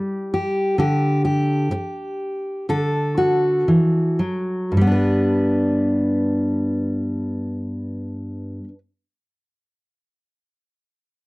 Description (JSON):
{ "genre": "folk", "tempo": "56-67 BPM", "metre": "4/4", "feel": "straight", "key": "G major", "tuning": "A4 = 439 Hz", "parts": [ { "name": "fingerpicked steel-string acoustic guitar", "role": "solo", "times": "0.0-8.8 s", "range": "G2 to B4", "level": "-19 LUFS", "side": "equal", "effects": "none" } ], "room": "light reverb", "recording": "dry, close 1970s-style studio recording", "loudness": "-18 LUFS", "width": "side -23 dB against mid", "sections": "0.0-4.7 A section; 4.7-9.1 B section", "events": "slowing down 0.0-4.7", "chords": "0.0 C (rootless); 0.8 Dsus4; 2.7 D; 4.7 G" }